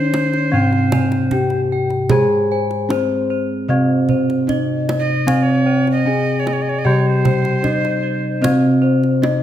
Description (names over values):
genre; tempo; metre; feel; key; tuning
Javanese gamelan; 76 BPM; 4/4; straight; C pelog; A4 = 440 Hz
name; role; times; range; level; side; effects
gamelan-type bronze metallophone; melody; 0.0-9.4 s; C4 to Ab4-20c; -19 LUFS; right 1 dB; tape echo
breathy bright alto recorder; second line; 0.0-8.5 s; C5 to Eb5-31c; -23 LUFS; right 3 dB; none
gamelan-type bronze metallophone; accompaniment; 0.0-9.4 s; C3 to Ab3-20c; -22 LUFS; left 3 dB; none
gamelan-type bossed gongs; arpeggios; 0.0-9.4 s; C5 to Ab5-20c; -26 LUFS; left 9 dB; none
gamelan-type bronze metallophone; arpeggios; 0.0-9.4 s; C5 to Ab5-20c; -28 LUFS; equal; none
gamelan-type bossed gongs; bass; 0.0-9.4 s; Ab2-20c to Ab4-20c; -20 LUFS; right 1 dB; none
kendang; percussion; 0.1-9.4 s; none; -23 LUFS; right 4 dB; none
room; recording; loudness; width
moderate recital hall reverb, RT60 1.4 s; none; -14 LUFS; side -11 dB against mid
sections
0.0-9.4 A section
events
none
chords
none